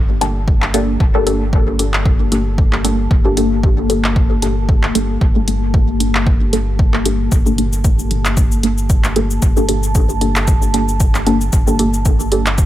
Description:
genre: dub techno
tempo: 114 BPM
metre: 4/4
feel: swing 55% on 16ths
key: G minor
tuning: A4 = 437 Hz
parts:
  - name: deep dark ambient pad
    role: sustained chords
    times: 0.7-12.7 s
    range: Bb3 to A5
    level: -24 LUFS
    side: left 3 dB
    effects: chorus, built-in reverb, sidechain pumping
  - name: warm sub bass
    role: bass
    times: 0.0-12.7 s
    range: G1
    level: -19 LUFS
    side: equal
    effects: sidechain pumping
  - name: filtered dub chord stab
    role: stabs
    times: 0.2-12.5 s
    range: Bb3 to A4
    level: -19 LUFS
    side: equal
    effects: phaser, sidechain pumping, dub echo
  - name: deep house drum kit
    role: drums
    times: 0.2-12.7 s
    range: cabasa, handclaps, hi-hat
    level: -22 LUFS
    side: equal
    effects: overdrive, studio reverb, dub echo
  - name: electronic kick drum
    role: drums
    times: 0.5-12.7 s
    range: none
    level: -14 LUFS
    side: equal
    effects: studio reverb
room: digital ambience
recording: none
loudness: -12 LUFS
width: side -14 dB against mid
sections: 0.0-12.7 A section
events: filter sweep on synth stab 0.0-12.7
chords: 0.0 Gmadd9

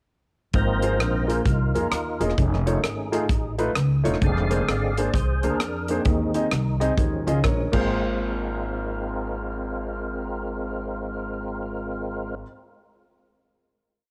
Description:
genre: uptempo gospel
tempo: 130 BPM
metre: 4/4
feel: swing 63% on 8ths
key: Ab major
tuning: A4 = 440 Hz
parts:
  - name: warm grand piano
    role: accompaniment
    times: 0.5-12.4 s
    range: Ab1 to Eb5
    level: -30 LUFS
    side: equal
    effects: cassette tape
  - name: upright bass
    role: bass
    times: 0.5-12.4 s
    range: Fb1 to F2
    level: -29 LUFS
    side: equal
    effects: none
  - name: crisp fusion drum kit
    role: drums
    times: 0.5-7.8 s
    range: crash cymbal, hi-hat, kick drum, rim click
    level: -29 LUFS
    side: equal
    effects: cassette tape
  - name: percussive tonewheel organ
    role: sustained chords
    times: 0.6-12.4 s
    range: D3 to F5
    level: -31 LUFS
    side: equal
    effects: slow rotary speaker, overdrive, chorus vibrato, cassette tape
room: small room reverb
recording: home recording on cassette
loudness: -24 LUFS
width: mono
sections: 0.5-7.9 breakdown; 7.9-11.6 final hit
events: tonewheel organ solo 0.5-7.9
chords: 0.5 Ab69; 2.4 F7alt; 4.2 Bb9/F; 6.1 Ab/Eb; 7.0 Eb9sus4; 7.7 Ab69

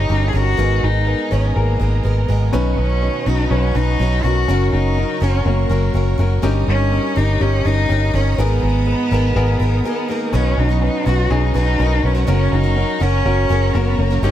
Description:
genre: piano-driven pop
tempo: 123 BPM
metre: 4/4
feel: straight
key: B major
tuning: A4 = 439 Hz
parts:
  - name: warm cello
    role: melody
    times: 0.0-14.3 s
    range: A#3 to G#4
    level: -22 LUFS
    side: equal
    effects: none
  - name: clear upright piano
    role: accompaniment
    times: 0.0-14.3 s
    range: G2 to C#5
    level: -23 LUFS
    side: left 4 dB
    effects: none
  - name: warm studio string section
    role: sustained chords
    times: 0.0-14.3 s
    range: B3 to D#6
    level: -31 LUFS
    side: right 1 dB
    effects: none
  - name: picked plugged-in acoustic archtop guitar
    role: riff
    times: 0.0-14.3 s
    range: F#2 to A#4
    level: -27 LUFS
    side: right 8 dB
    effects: none
  - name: vintage muted fingered electric bass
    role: bass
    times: 0.0-14.3 s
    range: F#1 to B1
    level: -17 LUFS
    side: equal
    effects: none
room: small room ambience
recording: none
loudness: -15 LUFS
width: side -12 dB against mid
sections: 0.0-10.3 A section; 10.3-14.3 B section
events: break 9.8-10.3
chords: 0.0 D#7/G; 0.6 G#madd9; 2.5 Badd9; 4.5 F#; 6.4 D#7/G; 8.4 G#madd9; 10.3 Badd9; 12.3 F#

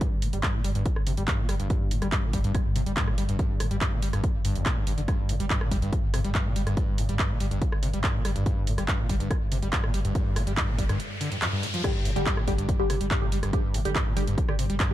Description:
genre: driving peak-time techno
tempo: 142 BPM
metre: 4/4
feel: straight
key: G minor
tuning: A4 = 442 Hz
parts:
  - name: overdriven acid bass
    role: riff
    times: 0.0-14.9 s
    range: F2 to G3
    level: -31 LUFS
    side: equal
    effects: distortion, lush chorus, vintage 12-bit sampler grit, sidechain pumping, ping-pong delay
  - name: swarming drone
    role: drone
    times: 0.3-14.9 s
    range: G2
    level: -35 LUFS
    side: left 1 dB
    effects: built-in reverb, sidechain pumping
  - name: electronic kick drum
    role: drums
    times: 0.0-14.9 s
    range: none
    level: -27 LUFS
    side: equal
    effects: none
  - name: techno drum kit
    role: drums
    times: 0.0-14.9 s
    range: crash cymbal, handclaps, hi-hat, rim click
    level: -32 LUFS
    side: right 1 dB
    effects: none
  - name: saturated sub bass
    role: bass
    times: 0.1-14.9 s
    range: G1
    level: -31 LUFS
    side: equal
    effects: overdrive, sidechain pumping, low-pass filter
  - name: riser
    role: sound effects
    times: 9.4-11.8 s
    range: none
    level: -37 LUFS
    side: left 1 dB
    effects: none
  - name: filtered dub chord stab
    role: stabs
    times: 11.8-14.9 s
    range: D3 to G4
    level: -31 LUFS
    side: equal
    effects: phaser, sidechain pumping, ping-pong delay
room: little or no reverb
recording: none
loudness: -24 LUFS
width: side -14 dB against mid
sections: 0.0-11.8 A section; 11.8-14.9 B section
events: riser 9.4-11.8; break 11.0-11.8; drop 11.8-14.9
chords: 0.0 G5

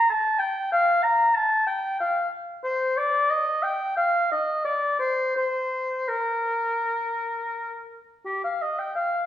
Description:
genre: classical, baroque-style fantasia for unaccompanied oboe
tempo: 78-96 BPM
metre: 4/4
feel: rubato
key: Bb major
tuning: A4 = 437 Hz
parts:
  - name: warm oboe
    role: solo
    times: 0.0-9.3 s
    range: G4 to Bb5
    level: -22 LUFS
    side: left 1 dB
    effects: none
room: wet recital hall reverb, RT60 1.3 s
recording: heard from further back in the room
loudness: -22 LUFS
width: side -11 dB against mid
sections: 0.0-8.2 A section; 8.2-9.3 A section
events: none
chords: none

